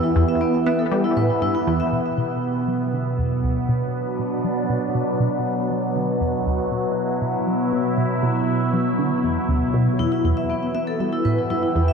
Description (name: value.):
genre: ambient, sequencer-driven space music.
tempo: 119 BPM.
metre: 4/4.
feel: straight.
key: unclear.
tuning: A4 = 440 Hz.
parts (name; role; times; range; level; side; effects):
evolving wavetable pad; sustained chords; 0.0-11.9 s; B2 to G4; -21 LUFS; right 1 dB; phaser, built-in reverb.
vibraphone with medium mallets; arpeggios; 0.0-1.9, 10.0-11.9 s; B3 to E5; -26 LUFS; left 2 dB; auto-pan, ping-pong delay.
tight sequenced synth; riff; 0.2-11.9 s; D2 to B3; -24 LUFS; equal; chorus, ping-pong delay.
room: wet huge ambient reverb, RT60 8.6 s.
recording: none.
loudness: -19 LUFS.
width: side -6 dB against mid.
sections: 0.0-1.9 A section; 1.9-11.9 B section.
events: filter sweep on synth arpeggio sound 1.9-11.9.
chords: 0.0 Em; 1.9 Bm; 10.0 Em.